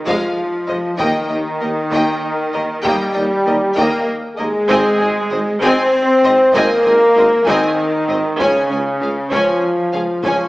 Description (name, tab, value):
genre	cinematic, epic orchestral film score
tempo	65 BPM (dotted quarters)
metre	6/8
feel	straight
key	unclear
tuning	A4 = 440 Hz
part	bright trombone section	sustained chords	0.0-10.5 s	Db3 to C4	-21 LUFS	right 1 dB	none
part	mellow French horn section	sustained chords	0.0-10.5 s	Db4 to C5	-18 LUFS	left 1 dB	none
part	clear symphonic cello section	bass	0.0-10.5 s	Db3 to C4	-23 LUFS	equal	none
part	clear studio violin section	melody	0.1-10.5 s	Eb5 to Ab5	-24 LUFS	left 1 dB	none
part	warm symphonic violin section	second line	0.1-10.5 s	Ab4 to Eb5	-24 LUFS	equal	none
part	rich studio viola section	accompaniment	0.1-10.5 s	Ab3 to Db4	-23 LUFS	right 1 dB	none
part	clear symphonic double bass section	bass	0.1-10.3 s	Ab1 to F2	-30 LUFS	right 1 dB	none
part	mellow tuba	bass	0.1-10.4 s	F1 to Eb2	-26 LUFS	right 1 dB	none
part	taiko ensemble	drums	0.1-10.5 s	none	-30 LUFS	equal	none
room	wet scoring stage reverb, RT60 1.6 s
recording	small speaker sound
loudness	-13 LUFS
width	side -19 dB against mid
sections	0.0-10.5 A section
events	none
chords	0.0 Fm7; 1.0 Eb; 4.7 Ab; 8.4 Db